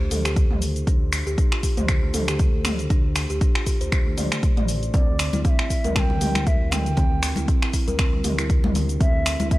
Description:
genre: afro house.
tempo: 118 BPM.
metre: 4/4.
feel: swing 56% on 16ths.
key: unclear.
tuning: A4 = 442 Hz.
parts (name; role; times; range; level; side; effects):
kalimba; arpeggios; 0.0-9.6 s; G3 to D5; -29 LUFS; right 1 dB; sidechain pumping, low-pass filter, tape echo.
dark detuned saw bass; bass; 0.0-9.5 s; A1 to D2; -26 LUFS; equal; sidechain pumping.
deep house drum kit; drums; 0.1-9.6 s; finger snaps, hi-hat, shaker, toms; -26 LUFS; equal; none.
electronic kick drum; drums; 0.4-9.6 s; none; -20 LUFS; equal; none.
mellow bansuri; melody; 4.9-9.6 s; D5 to A5; -30 LUFS; right 1 dB; tape echo.
congas; percussion; 4.9-9.5 s; none; -30 LUFS; left 2 dB; none.
room: digital ambience.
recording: dry, gritty hardware recording, cassette tape.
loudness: -19 LUFS.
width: side -18 dB against mid.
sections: 0.0-9.6 A section.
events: filter sweep on kalimba 0.0-9.6.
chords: 0.0 D5; 4.9 Cadd9/D.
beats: 0.36 | 0.87 1.38 1.89 2.40 | 2.90 3.41 3.92 4.43 | 4.94 5.45 5.96 6.46 | 6.97 7.48 7.99 8.50 | 9.01 9.52.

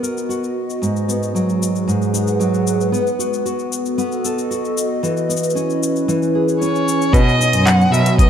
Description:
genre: folktronica.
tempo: 114 BPM.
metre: 4/4.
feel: straight.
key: B major.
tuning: A4 = 440 Hz.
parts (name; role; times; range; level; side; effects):
warbly tape-like pad; sustained chords; 0.0-8.3 s; G#3 to G#5; -22 LUFS; equal; chorus, built-in reverb.
nylon-string guitar; arpeggios; 0.0-8.3 s; G#2 to A#4; -19 LUFS; right 1 dB; low-pass filter, tape echo.
organic electronic drum kit; drums; 0.0-8.3 s; cabasa, handclaps, hi-hat; -26 LUFS; left 4 dB; small room ambience.
dark violin; melody; 6.6-8.3 s; C#5 to F#5; -18 LUFS; right 1 dB; none.
celesta; second line; 7.1-8.3 s; B4; -29 LUFS; equal; none.
rich cello; bass; 7.1-8.0 s; F#2 to B2; -16 LUFS; equal; none.
electronic kick drum; drums; 7.1-8.3 s; none; -12 LUFS; equal; small room ambience.
twinkling granular texture; texture; 7.5-8.3 s; D#6; -31 LUFS; left 6 dB; none.
room: light reverb, studio ambience.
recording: none.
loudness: -16 LUFS.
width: side -9 dB against mid.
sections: 0.0-7.1 A section; 7.1-8.3 B section.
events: none.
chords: 0.0 Bmaj7; 0.8 G#m7; 2.9 B7; 5.0 E6; 7.1 Bmaj7.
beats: 0.29 | 0.82 1.35 1.87 2.40 | 2.93 3.45 3.98 4.50 | 5.03 5.56 6.08 6.61 | 7.14 7.66 8.19.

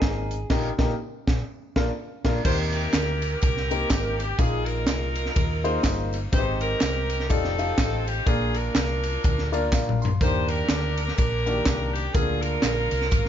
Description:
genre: uptempo gospel.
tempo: 124 BPM.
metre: 4/4.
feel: swing 59% on 8ths.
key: Eb major.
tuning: A4 = 441 Hz.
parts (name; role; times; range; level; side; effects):
clean electric guitar; second line; 0.0-0.5 s; Ab4; -37 LUFS; right 2 dB; none.
warm upright piano; accompaniment; 0.0-12.9 s; Ab2 to C6; -29 LUFS; left 2 dB; none.
hollow-body short-scale fingered electric bass; bass; 0.0-13.3 s; F1 to Eb2; -28 LUFS; equal; none.
crisp fusion drum kit; drums; 0.0-13.3 s; crash cymbal, hi-hat, kick drum, ride cymbal, snare drum, toms; -25 LUFS; equal; none.
bright saxophone section; melody; 2.4-13.3 s; C4 to C5; -28 LUFS; equal; none.
tambourine and handclaps; percussion; 2.5-13.2 s; none; -38 LUFS; right 2 dB; none.
room: light reverb.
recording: nothing above 7.5 kHz.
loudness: -22 LUFS.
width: side -10 dB against mid.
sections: 0.0-2.4 A section; 2.4-13.3 B section.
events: band accent 0.5-2.4; upright piano fill 9.2-10.2; drum fill 9.7-10.2.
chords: 0.0 Bb9sus4; 0.5 Eb/Bb; 1.5 Bb; 2.4 Eb6; 4.4 Bb7sus4; 6.3 Abmaj7; 7.3 F13; 8.3 Bb; 10.2 Ebmaj7; 12.1 Bb7.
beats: 0.02 | 0.50 0.99 1.48 1.96 | 2.45 2.93 3.42 3.90 | 4.39 4.87 5.36 5.84 | 6.33 6.81 7.30 7.78 | 8.27 8.75 9.24 9.72 | 10.21 10.69 11.18 11.66 | 12.14 12.63 13.11.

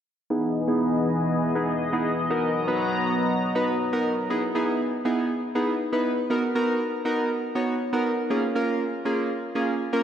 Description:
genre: pop.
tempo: 120 BPM.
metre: 4/4.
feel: straight.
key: unclear.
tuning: A4 = 438 Hz.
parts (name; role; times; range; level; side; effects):
chorused retro synth keys; accompaniment; 0.3-10.0 s; A#3 to C#5; -24 LUFS; right 1 dB; low-pass filter.
chorused pulse-width pad; sustained chords; 0.3-4.3 s; E3 to A#5; -26 LUFS; left 1 dB; low-pass filter.
room: wet plate reverb, RT60 2.8 s.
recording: dreamy mix soaked in reverb.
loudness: -23 LUFS.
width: side -9 dB against mid.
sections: 0.3-4.3 A section; 4.3-10.0 B section.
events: filter sweep 0.3-4.3.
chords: 0.3 Emaj7; 2.3 Bmaj7; 4.3 Emaj7; 6.3 Bmaj7; 8.3 A#m7.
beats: | 0.30 0.80 1.30 1.80 | 2.30 2.80 3.30 3.80 | 4.30 4.80 5.30 5.80 | 6.30 6.80 7.30 7.80 | 8.30 8.80 9.30 9.80.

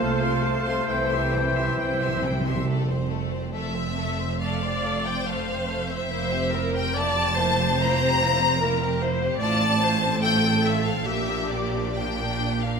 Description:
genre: classical, slow romantic movement for symphony orchestra.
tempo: 64-75 BPM.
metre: 4/4.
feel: rubato.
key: F major.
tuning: A4 = 440 Hz.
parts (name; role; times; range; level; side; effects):
rich studio violin section; melody; 0.0-12.8 s; A4 to Bb5; -27 LUFS; left 3 dB; none.
bright flute section; second line; 0.0-2.2 s; C5; -30 LUFS; left 1 dB; none.
clear chamber violin section; second line; 0.0-12.8 s; A3 to C6; -32 LUFS; left 5 dB; none.
clear oboe; second line; 0.0-2.4 s; F5 to G5; -30 LUFS; left 2 dB; none.
warm clarinet; second line; 0.0-2.3 s; C5; -34 LUFS; left 4 dB; none.
rich chamber viola section; accompaniment; 0.0-12.8 s; D4 to E5; -28 LUFS; equal; none.
warm bassoon; accompaniment; 0.0-2.3 s; E3 to F3; -32 LUFS; right 1 dB; none.
mellow French horn section; sustained chords; 0.0-1.8 s; A3; -30 LUFS; left 2 dB; none.
rich chamber cello section; bass; 0.0-12.8 s; F2 to C3; -30 LUFS; right 4 dB; none.
rich chamber double bass section; bass; 0.0-12.8 s; F1 to C2; -29 LUFS; right 4 dB; none.
timpani; percussion; 0.0-2.6 s; C3; -30 LUFS; right 2 dB; none.
room: wet scoring stage reverb, RT60 1.8 s.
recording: none.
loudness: -22 LUFS.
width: side -5 dB against mid.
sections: 0.0-2.7 A section; 2.7-12.8 B section.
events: timpani fill 0.9-2.7.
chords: 0.0 F/C; 0.9 C; 2.7 F; 6.1 C7/F; 9.4 F/A; 11.1 Gm/Bb.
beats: 0.00 0.89 1.79 | 2.68 3.54 4.41 5.26 | 6.10 6.95 7.78 8.60 | 9.40 10.22 11.06 11.97.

